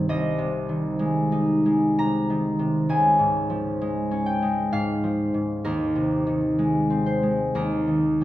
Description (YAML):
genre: classical, solo harp piece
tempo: 58-67 BPM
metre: 3/4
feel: rubato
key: Ab major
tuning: A4 = 440 Hz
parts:
  - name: concert harp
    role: solo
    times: 0.0-8.2 s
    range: C2 to Bb5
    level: -21 LUFS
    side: equal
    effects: none
room: wet recital hall reverb, RT60 1.5 s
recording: none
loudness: -21 LUFS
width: side -14 dB against mid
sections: 0.0-8.2 A section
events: none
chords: 0.1 Ab/C; 2.9 Db; 5.7 Ab/Eb; 7.5 Eb5